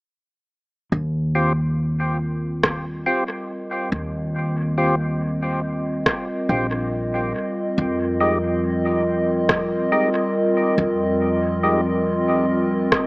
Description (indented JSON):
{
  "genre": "ambient dub",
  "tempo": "70 BPM",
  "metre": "4/4",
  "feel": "straight",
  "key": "unclear",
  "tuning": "A4 = 440 Hz",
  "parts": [
    { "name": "warbly tape-like pad", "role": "sustained chords", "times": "1.7-13.1 s", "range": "G3 to Eb5", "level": "-22 LUFS", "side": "equal", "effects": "chorus, built-in reverb" },
    { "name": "upright bass", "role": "bass", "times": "0.9-12.9 s", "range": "Bb1 to F2", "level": "-24 LUFS", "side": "equal", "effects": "none" },
    { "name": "percussive tonewheel organ", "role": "stabs", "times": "1.4-11.8 s", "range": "Ab3 to G4", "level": "-25 LUFS", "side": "equal", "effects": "overdrive, slow rotary speaker, dub echo" },
    { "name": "electronic kick drum", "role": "drums", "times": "2.6-13.1 s", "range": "none", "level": "-28 LUFS", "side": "equal", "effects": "overdrive" },
    { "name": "electronic rim click", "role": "drums", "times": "2.6-13.1 s", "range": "none", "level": "-23 LUFS", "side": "equal", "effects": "overdrive, dub echo" }
  ],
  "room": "light reverb",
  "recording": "echo-heavy mix, small speaker sound",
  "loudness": "-19 LUFS",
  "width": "side -25 dB against mid",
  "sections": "0.9-13.1 A section",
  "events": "none",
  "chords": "0.9 Eb6; 7.8 Fm7"
}